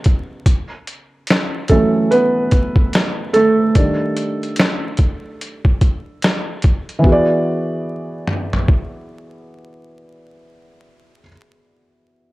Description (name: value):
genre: lo-fi hip hop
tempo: 73 BPM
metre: 4/4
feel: swing 63% on 16ths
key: unclear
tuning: A4 = 440 Hz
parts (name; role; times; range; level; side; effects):
- felt-muted upright piano; accompaniment; 0.0-12.3 s; C#3 to D5; -16 LUFS; right 1 dB; low-pass filter
- boom bap sampler-style drum kit; drums; 0.0-8.9 s; hi-hat, kick drum, snare drum, toms; -15 LUFS; equal; vintage 12-bit sampler grit
room: moderate spring reverb, RT60 2.1 s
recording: vinyl crackle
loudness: -14 LUFS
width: side -19 dB against mid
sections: 0.0-7.0 A section; 7.0-10.3 B section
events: felt piano solo 0.0-7.0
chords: 0.5 A69/E; 3.8 D#maj7#11; 7.0 E7